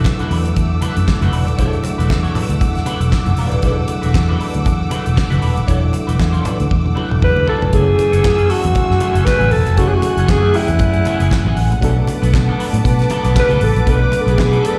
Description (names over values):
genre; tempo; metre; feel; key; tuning
disco; 117 BPM; 4/4; swing 56% on 16ths; F# minor; A4 = 440 Hz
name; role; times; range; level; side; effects
electric guitar at the edge of break-up; accompaniment; 0.0-14.8 s; E3 to C#5; -30 LUFS; equal; wah, slapback echo
mellow tine electric piano; accompaniment; 0.0-14.8 s; F#3 to B4; -25 LUFS; equal; slapback echo
clear studio string section; sustained chords; 0.0-14.8 s; A3 to F#6; -28 LUFS; equal; none
vintage muted fingered electric bass; bass; 0.0-14.6 s; D#1 to B2; -18 LUFS; equal; none
congas; percussion; 0.0-14.5 s; none; -27 LUFS; equal; none
damped 70s drum kit; drums; 0.1-14.8 s; handclaps, hi-hat, kick drum, snare drum, toms; -22 LUFS; equal; none
growling alto saxophone; melody; 7.2-14.8 s; E4 to B4; -19 LUFS; equal; slapback echo
room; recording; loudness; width
light reverb; live gig heard through the venue's PA, recital hall reverb; -15 LUFS; mono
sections
0.0-7.7 A section; 7.7-14.8 B section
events
drum fill 6.7-7.7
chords
0.0 E9sus4; 7.7 F#m9; 11.8 Bm7